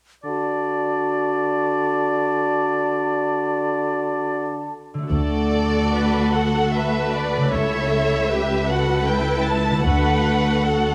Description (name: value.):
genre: classical, slow romantic movement for symphony orchestra.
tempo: 64-80 BPM.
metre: 3/4.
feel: rubato.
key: D major.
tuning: A4 = 440 Hz.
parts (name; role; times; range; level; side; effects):
clear clarinet; second line; 0.2-4.7 s; F#4; -28 LUFS; equal; none.
clear oboe; second line; 0.2-4.7 s; D5; -29 LUFS; equal; none.
mellow hollow concert flute; second line; 0.2-4.7 s; A5; -29 LUFS; equal; none.
warm bassoon; accompaniment; 0.3-4.7 s; D3; -28 LUFS; equal; none.
concert harp; arpeggios; 4.9-10.9 s; C#3 to A4; -30 LUFS; equal; none.
rich studio violin section; melody; 5.1-10.9 s; D5 to A5; -28 LUFS; equal; none.
rich studio violin section; second line; 5.1-10.9 s; E4 to C#5; -28 LUFS; equal; none.
rich studio viola section; accompaniment; 5.1-10.9 s; E4 to B4; -28 LUFS; equal; none.
rich studio cello section; bass; 5.1-10.9 s; C#2 to D2; -25 LUFS; equal; none.
rich studio double bass section; bass; 5.1-10.6 s; C#2 to D2; -27 LUFS; equal; none.
room: moderate concert hall reverb, RT60 2.2 s.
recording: none.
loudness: -21 LUFS.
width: mono.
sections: 0.2-5.1 A section; 5.1-10.9 B section.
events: none.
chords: 0.2 D; 7.5 A7/C#; 9.9 D.